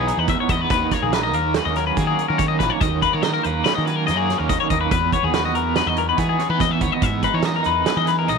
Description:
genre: math rock and midwest emo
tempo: 142 BPM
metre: 5/4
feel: straight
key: E lydian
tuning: A4 = 441 Hz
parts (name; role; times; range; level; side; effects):
- electric guitar at the edge of break-up; accompaniment; 0.0-8.4 s; E2 to A#4; -24 LUFS; right 14 dB; tremolo
- twangy electric guitar; arpeggios; 0.0-8.4 s; G#4 to E5; -21 LUFS; left 15 dB; analog chorus
- fuzz picked electric bass; bass; 0.0-8.4 s; A#1 to E3; -24 LUFS; equal; overdrive
- loose indie drum kit; drums; 0.1-8.4 s; hi-hat, kick drum, snare drum; -25 LUFS; right 4 dB; none
room: small room ambience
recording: 1960s-style stereo with parts hard left and right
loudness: -17 LUFS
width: side -5 dB against mid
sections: 0.0-8.4 A section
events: none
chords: 0.0 Emaj9; 0.7 Bmaj9; 4.9 Emaj9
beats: 0.27 | 0.69 1.12 1.54 1.96 2.38 | 2.80 3.22 3.65 4.07 4.49 | 4.91 5.33 5.75 6.17 6.60 | 7.02 7.44 7.86 8.28

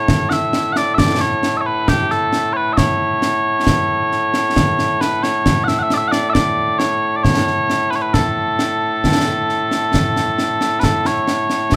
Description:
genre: scottish traditional, Scottish pipe music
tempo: 67 BPM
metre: 3/4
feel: straight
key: A major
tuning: A4 = 439 Hz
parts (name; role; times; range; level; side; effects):
- mellow small bagpipes; melody; 0.0-11.8 s; A2 to F#5; -19 LUFS; equal; none
- concert snare drum and concert bass drum; drums; 0.1-11.8 s; none; -21 LUFS; equal; none
room: light reverb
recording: close, detailed microphones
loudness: -17 LUFS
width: mono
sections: 0.0-10.8 A section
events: none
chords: none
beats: | 0.08 0.98 1.87 | 2.77 3.67 4.56 | 5.46 6.35 7.25 | 8.14 9.04 9.93 | 10.83 11.72

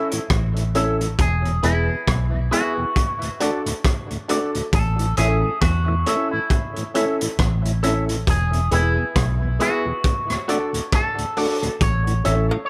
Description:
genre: roots reggae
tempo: 68 BPM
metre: 4/4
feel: swing 58% on 16ths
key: A major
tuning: A4 = 440 Hz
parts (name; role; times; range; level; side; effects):
- electric guitar with an envelope filter; melody; 0.0-12.7 s; E4 to C#5; -29 LUFS; equal; tape echo
- clean electric guitar; accompaniment; 0.0-12.5 s; F#4 to E5; -32 LUFS; equal; tape echo
- dark upright piano; stabs; 0.0-12.5 s; B3 to A4; -28 LUFS; equal; none
- mellow tonewheel organ; accompaniment; 0.1-12.6 s; D2 to F#4; -32 LUFS; equal; overdrive, chorus vibrato, slow rotary speaker, tape echo
- crunchy breakbeat drum kit; drums; 0.1-12.5 s; hi-hat, kick drum, rim click; -25 LUFS; equal; none
- vintage muted fingered electric bass; bass; 0.3-12.5 s; E1 to E2; -23 LUFS; equal; none
- cowbell; percussion; 12.5-12.7 s; none; -30 LUFS; equal; none
room: light reverb, small room ambience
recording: none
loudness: -21 LUFS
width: mono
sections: 0.0-12.7 A section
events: none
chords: 0.0 A; 1.2 E; 3.0 D; 4.7 A; 8.3 E; 10.0 D; 11.8 A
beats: 0.30 | 1.19 2.07 2.96 3.84 | 4.73 5.62 6.50 7.39 | 8.27 9.15 10.04 10.92 | 11.81 12.69

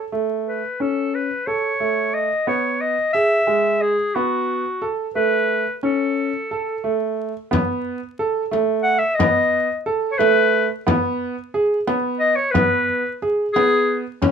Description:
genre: contemporary instrumental, chamber music in an uneven meter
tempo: 179 BPM (eighths)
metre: 5/8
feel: straight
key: unclear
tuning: A4 = 440 Hz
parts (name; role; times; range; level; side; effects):
- bright clarinet; melody; 0.0-14.0 s; F#4 to F#5; -19 LUFS; left 2 dB; none
- clear baby grand piano; arpeggios; 0.0-14.3 s; G#3 to A4; -21 LUFS; right 2 dB; none
- frame drum; percussion; 7.5-14.3 s; none; -22 LUFS; left 2 dB; none
room: moderate studio reverb, RT60 0.5 s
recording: vinyl crackle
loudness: -18 LUFS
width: side -7 dB against mid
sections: 0.0-7.5 A section; 7.5-14.3 B section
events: none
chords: 0.0 A; 2.5 E; 4.2 B5; 5.8 A; 7.5 B7/A; 10.9 B5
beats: 0.13 0.46 | 0.80 1.14 1.47 1.81 2.15 | 2.48 2.82 3.15 3.49 3.83 | 4.16 4.50 4.83 5.17 5.50 | 5.84 6.17 6.51 6.85 7.18 | 7.52 7.85 8.19 8.53 8.86 | 9.20 9.53 9.87 10.20 10.54 | 10.87 11.21 11.54 11.88 12.22 | 12.55 12.89 13.22 13.56 13.89 | 14.23

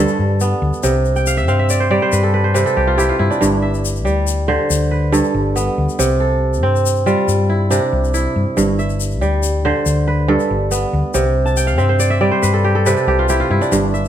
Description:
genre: west african traditional, West African string and xylophone music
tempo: 93 BPM (dotted quarters)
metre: 12/8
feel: straight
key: unclear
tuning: A4 = 441 Hz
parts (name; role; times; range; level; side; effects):
- kora; arpeggios; 0.0-14.1 s; G2 to A5; -16 LUFS; right 2 dB; slapback echo
- hollow-body short-scale fingered electric bass; bass; 0.0-14.1 s; G1 to G2; -18 LUFS; left 1 dB; none
- tube shaker; percussion; 0.1-14.1 s; none; -26 LUFS; left 10 dB; none
room: light reverb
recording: close, detailed microphones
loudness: -14 LUFS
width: side -10 dB against mid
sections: 0.0-14.1 A section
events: kora fill 1.2-3.4, 11.5-13.7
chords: 0.0 G; 0.8 C; 3.4 G; 6.0 C; 8.6 G; 11.1 C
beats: 0.19 | 0.84 1.48 2.13 2.77 | 3.42 4.06 4.70 5.35 | 5.99 6.64 7.28 7.92 | 8.57 9.21 9.86 10.50 | 11.15 11.79 12.44 13.08 | 13.72

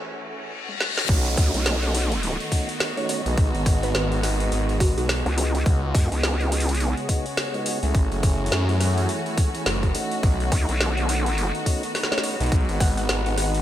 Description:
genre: glitch hop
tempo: 105 BPM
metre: 4/4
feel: swing 59% on 16ths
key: unclear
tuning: A4 = 439 Hz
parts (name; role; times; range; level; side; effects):
- dark studio string section; sustained chords; 0.0-13.6 s; C#3 to F#4; -32 LUFS; equal; vintage 12-bit sampler grit, sidechain pumping
- reverse cymbal and downlifter; sound effects; 0.3-5.7 s; none; -30 LUFS; left 2 dB; none
- drum and bass drum kit; drums; 0.7-13.6 s; crash cymbal, hi-hat, rim click, snare drum, toms; -28 LUFS; equal; gated reverb
- tonewheel organ; stabs; 1.1-13.6 s; G#3 to G#4; -31 LUFS; right 1 dB; overdrive, slow rotary speaker, sidechain pumping, digital delay
- phased detuned saw bass; bass; 1.1-13.6 s; F#1 to F#2; -24 LUFS; equal; phaser, tube saturation, high-pass filter
- electronic kick drum; drums; 1.1-12.9 s; none; -21 LUFS; equal; none
- warbly tape-like pad; texture; 2.2-13.6 s; A3 to F#5; -34 LUFS; right 1 dB; chorus, built-in reverb, sidechain pumping
- vowel-sweep wobble bass; bass; 1.4-6.9, 10.5-11.5 s; B1 to F#2; -23 LUFS; equal; chorus
- woody wave-folded pluck; melody; 3.0-5.0, 12.1-13.0 s; F#4 to F#5; -33 LUFS; right 2 dB; chorus, digital delay
room: little or no reverb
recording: bright 1980s-style digital production, high-pass filter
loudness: -20 LUFS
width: side -12 dB against mid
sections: 0.0-1.1 A section; 1.1-13.6 B section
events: break 0.0-1.1; build-up 0.0-1.1; filter sweep on tonewheel organ 0.0-1.1; filter sweep 0.0-1.1; reverse cymbal 0.3-1.1; drum fill 0.7-1.1; drop 1.1-13.6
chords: 0.0 F#m7; 1.1 B7; 3.4 G#m7; 5.7 C#7sus4; 7.9 F#m7; 10.2 B7; 12.5 G#m7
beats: 0.52 | 1.09 1.66 2.23 2.80 | 3.38 3.95 4.52 5.09 | 5.66 6.23 6.80 7.38 | 7.95 8.52 9.09 9.66 | 10.23 10.80 11.38 11.95 | 12.52 13.09

